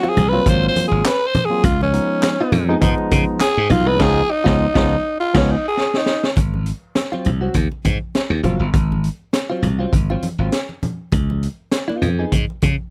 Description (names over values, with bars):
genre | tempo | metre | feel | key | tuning
funk | 101 BPM | 4/4 | swing 56% on 16ths | unclear | A4 = 440 Hz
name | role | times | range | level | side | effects
growling tenor saxophone | melody | 0.0-6.3 s | Db4 to C5 | -21 LUFS | equal | none
direct-recorded clean electric guitar | accompaniment | 0.0-12.3 s | Gb3 to Ab4 | -25 LUFS | equal | analog chorus
congas | percussion | 0.0-12.8 s | none | -27 LUFS | equal | none
glassy slap bass | bass | 0.2-12.7 s | Gb1 to Db3 | -21 LUFS | equal | none
raw garage drum kit | drums | 0.2-12.8 s | crash cymbal, handclaps, hi-hat, kick drum, snare drum | -22 LUFS | equal | none
barky tine electric piano | stabs | 0.3-5.5 s | F3 to F4 | -24 LUFS | equal | overdrive
room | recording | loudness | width
little or no reverb | dry, close 1970s-style studio recording | -18 LUFS | mono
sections
0.0-6.4 A section; 6.4-12.9 B section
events
tenor saxophone solo 0.0-6.4; band accent 4.0-6.4; drum fill 5.8-6.4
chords
0.0 Ab13; 1.6 Db9; 6.4 Ab6; 11.1 Db9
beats
0.46 1.05 | 1.64 2.23 2.82 3.41 | 4.00 4.59 5.18 5.78 | 6.37 6.96 7.56 8.15 | 8.75 9.34 9.94 10.54 | 11.13 11.73 12.32